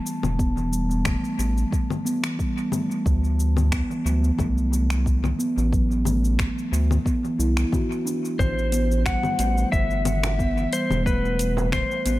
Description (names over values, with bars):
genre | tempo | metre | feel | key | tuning
organic downtempo | 90 BPM | 4/4 | swing 54% on 16ths | A dorian | A4 = 439 Hz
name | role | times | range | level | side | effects
steel tongue drum | arpeggios | 0.0-12.2 s | E3 to F#4 | -26 LUFS | right 1 dB | analog delay
bronze singing bowl | texture | 0.0-12.2 s | A5 | -44 LUFS | left 3 dB | shimmer reverb
afro-pop drum kit | drums | 0.1-12.2 s | cabasa, congas, finger snaps, hi-hat | -30 LUFS | left 3 dB | dub echo
round analog bass | bass | 0.2-12.2 s | E1 to D2 | -23 LUFS | equal | sidechain pumping
electronic kick drum | drums | 0.4-11.9 s | none | -25 LUFS | equal | none
clean lap steel guitar | melody | 8.4-12.2 s | B4 to F#5 | -26 LUFS | left 2 dB | dub echo, shimmer reverb
frame drum | percussion | 10.2-11.7 s | none | -35 LUFS | right 4 dB | dub echo
room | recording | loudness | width
light reverb, digital ambience | echo-heavy mix | -20 LUFS | side -16 dB against mid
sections
0.0-12.2 A section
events
none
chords
0.0 A5; 3.1 D7; 8.4 Am7